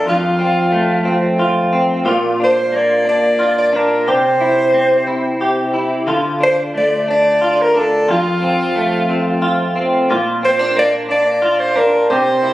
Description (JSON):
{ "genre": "pop", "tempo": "60 BPM (dotted quarters)", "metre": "6/8", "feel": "straight", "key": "F major", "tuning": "A4 = 440 Hz", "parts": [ { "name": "breathy soprano saxophone", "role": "melody", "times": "0.0-12.5 s", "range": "F4 to D5", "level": "-15 LUFS", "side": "equal", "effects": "none" }, { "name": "direct-recorded clean electric guitar", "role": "accompaniment", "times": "0.0-12.5 s", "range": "F2 to G4", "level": "-16 LUFS", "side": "equal", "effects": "double-tracked left and right" } ], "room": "moderate lush hall reverb, RT60 2.9 s", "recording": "recorded on a phone in the room, studio reverb, compression", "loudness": "-13 LUFS", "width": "side -15 dB against mid", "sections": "0.0-12.5 A section", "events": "none", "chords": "0.1 F; 2.1 Bb; 4.1 C; 6.1 Dm; 8.1 F; 10.1 Bb", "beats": "| 0.06 1.06 | 2.06 3.06 | 4.07 5.07 | 6.07 7.08 | 8.08 9.08 | 10.09 11.09 | 12.09" }